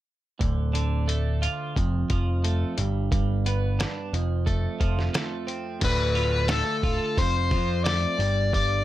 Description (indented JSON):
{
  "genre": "quiet-loud alternative rock",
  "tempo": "88 BPM",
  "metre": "4/4",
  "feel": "straight",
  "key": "D dorian",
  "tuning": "A4 = 440 Hz",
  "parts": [
    { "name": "twelve-string electric guitar", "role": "arpeggios", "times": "0.4-8.8 s", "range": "D2 to F4", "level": "-30 LUFS", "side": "right 4 dB", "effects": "lush chorus" },
    { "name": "overdriven picked electric bass", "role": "bass", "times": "0.4-8.8 s", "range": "D1 to F2", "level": "-25 LUFS", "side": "equal", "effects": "none" },
    { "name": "lo-fi sampler-style drum kit", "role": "drums", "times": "0.4-8.7 s", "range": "crash cymbal, hi-hat, kick drum, snare drum", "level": "-28 LUFS", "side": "equal", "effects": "none" },
    { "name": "smooth overdriven lead guitar", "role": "melody", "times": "5.8-8.8 s", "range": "A4 to D5", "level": "-26 LUFS", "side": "left 3 dB", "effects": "none" }
  ],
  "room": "little or no reverb",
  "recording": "none",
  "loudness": "-23 LUFS",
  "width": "side -14 dB against mid",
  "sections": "0.4-5.8 A section; 5.8-8.8 B section",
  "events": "break 5.5-5.8",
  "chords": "0.4 Dm; 1.8 F; 2.8 G; 4.1 F; 5.8 Dm; 7.2 F; 8.2 G5",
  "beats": "| 0.40 1.08 1.75 2.43 | 3.11 3.79 4.46 5.14 | 5.82 6.50 7.18 7.86 | 8.54"
}